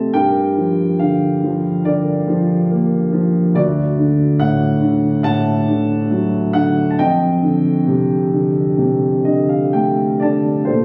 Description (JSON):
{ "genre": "classical, lyrical solo piano", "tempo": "60-73 BPM", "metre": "4/4", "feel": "rubato", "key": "unclear", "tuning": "A4 = 440 Hz", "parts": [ { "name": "dark concert grand piano", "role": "solo", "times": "0.0-10.8 s", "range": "D2 to A5", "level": "-16 LUFS", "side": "equal", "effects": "none" } ], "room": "moderate recital hall reverb, RT60 1.8 s", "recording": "recorded on a phone in the room, club reverb, compression", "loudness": "-16 LUFS", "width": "mono", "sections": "0.0-10.7 A section", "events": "grand piano fill 8.8-10.7", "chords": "0.1 Gm7; 3.6 D; 7.0 F13" }